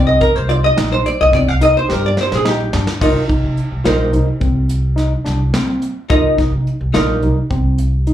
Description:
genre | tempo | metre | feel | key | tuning
progressive instrumental, band music in an uneven meter | 214 BPM (eighths) | 11/8 | straight | C minor | A4 = 440 Hz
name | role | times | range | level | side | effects
archtop guitar, miked and amplified | accompaniment | 0.0-7.3 s | Eb4 to F5 | -15 LUFS | equal | double-tracked left and right, slapback echo
tine electric piano | arpeggios | 0.0-8.1 s | C4 to G4 | -21 LUFS | left 1 dB | phaser, slapback echo
upright bass | bass | 0.0-8.1 s | Bb1 to C3 | -17 LUFS | equal | none
soft brush drum kit | drums | 0.2-8.1 s | crash cymbal, hi-hat, kick drum, snare drum | -21 LUFS | equal | none
room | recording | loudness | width
light reverb | live gig heard through the venue's PA, club reverb | -13 LUFS | side -11 dB against mid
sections
0.0-3.0 A section; 3.0-8.1 B section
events
hollow-body jazz guitar solo 0.0-3.0; drum fill 1.9-3.0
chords
0.0 Cm7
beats
0.22 0.50 0.78 1.06 1.34 1.62 1.90 2.18 2.46 2.74 | 3.02 3.30 3.58 3.86 4.14 4.42 4.70 4.98 5.26 5.54 5.82 | 6.10 6.38 6.66 6.94 7.22 7.51 7.79 8.07

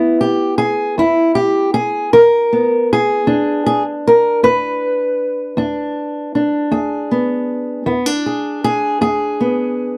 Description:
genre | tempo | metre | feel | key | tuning
acoustic country blues, solo or duo | 52 BPM (dotted quarters) | 12/8 | straight | E mixolydian | A4 = 441 Hz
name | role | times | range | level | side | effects
fingerpicked old ladder-braced acoustic guitar | solo | 0.0-10.0 s | E2 to B4 | -16 LUFS | equal | none
room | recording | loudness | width
little or no reverb | dry, close 1970s-style studio recording | -16 LUFS | mono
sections
0.0-7.9 A section; 7.9-10.0 B section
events
steel-string acoustic guitar solo 7.9-10.0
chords
0.0 E7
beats
0.98 2.13 | 3.29 4.43 5.58 6.73 | 7.88 9.02

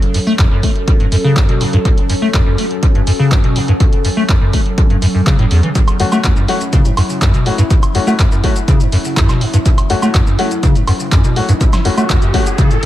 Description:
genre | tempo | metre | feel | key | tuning
acid house | 123 BPM | 4/4 | straight | F# phrygian | A4 = 440 Hz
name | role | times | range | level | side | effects
warbly tape-like pad | sustained chords | 0.0-12.9 s | F#3 to A4 | -21 LUFS | equal | chorus, built-in reverb, phaser, sidechain pumping
punchy analog drum machine | drums | 0.0-12.9 s | handclaps, hi-hat, shaker, snare drum, woodblock | -21 LUFS | right 1 dB | dub echo
acid bass, square | riff | 0.1-12.9 s | E2 to A3 | -15 LUFS | equal | lush chorus, sidechain pumping, tape echo
electronic kick drum | drums | 0.4-12.7 s | none | -13 LUFS | equal | none
bright grand piano | stabs | 6.0-12.4 s | A3 to F#4 | -20 LUFS | left 5 dB | dub echo
riser | sound effects | 10.5-12.9 s | none | -25 LUFS | right 1 dB | none
room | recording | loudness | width
light reverb | echo-heavy mix | -10 LUFS | side -14 dB against mid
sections
0.0-12.9 A section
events
riser 10.5-12.9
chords
0.0 F#m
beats
0.39 0.88 1.36 | 1.85 2.34 2.83 3.31 | 3.80 4.29 4.78 5.27 | 5.75 6.24 6.73 7.22 | 7.71 8.19 8.68 9.17 | 9.66 10.14 10.63 11.12 | 11.61 12.10 12.58

